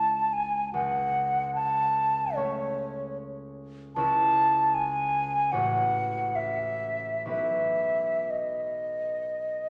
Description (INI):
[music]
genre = classical, romantic duo for flute and harp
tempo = 59-78 BPM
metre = 4/4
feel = rubato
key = unclear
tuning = A4 = 440 Hz
[part]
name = mellow hollow silver concert flute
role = melody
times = 0.0-9.7 s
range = C#5 to A5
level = -28 LUFS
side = equal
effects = none
[part]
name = concert harp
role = accompaniment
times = 0.0-9.7 s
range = A1 to C#5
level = -39 LUFS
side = equal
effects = none
[sound]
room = wet recital hall reverb, RT60 1.8 s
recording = none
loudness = -27 LUFS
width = mono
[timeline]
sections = 0.0-9.7 A section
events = none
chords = 0.0 C#m; 0.7 F#m/C#; 4.0 C#m; 5.5 F#m/A; 7.3 B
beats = | 0.73 1.55 2.36 3.17 | 3.97 4.74 5.53 6.36 | 7.30 8.31 9.28